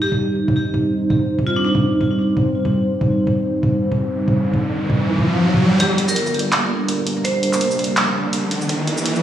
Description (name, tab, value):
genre	half-time drum and bass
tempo	166 BPM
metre	4/4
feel	swing 57% on 16ths, half-time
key	G minor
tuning	A4 = 440 Hz
part	vibraphone with hard mallets	melody	0.0-1.7, 5.8-7.8 s	D4 to C5	-24 LUFS	equal	vintage 12-bit sampler grit, digital delay
part	dark analog pad	sustained chords	0.0-9.2 s	G3 to C5	-20 LUFS	right 1 dB	chorus, sidechain pumping
part	drum and bass drum kit	drums	0.1-9.2 s	handclaps, hi-hat, shaker, toms	-21 LUFS	right 1 dB	high-pass filter on toms, high-pass filter on hats, high-pass filter on perc, high-pass filter on snare
part	riser	sound effects	4.0-9.2 s	none	-22 LUFS	equal	none
part	dark detuned saw bass	bass	5.8-9.2 s	F1 to G1	-27 LUFS	right 1 dB	high-pass filter
part	electronic kick drum	drums	5.8-8.8 s	none	-29 LUFS	equal	none
room	moderate lush hall reverb, RT60 1.9 s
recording	played on a big sound system in a bare room, stone room reverb, high-pass filter, studio reverb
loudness	-16 LUFS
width	side -10 dB against mid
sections	0.0-5.8 A section; 5.8-9.2 B section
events	riser 4.0-5.8, 5.8-9.2; build-up 5.8-9.2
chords	0.0 Cm; 5.8 Gm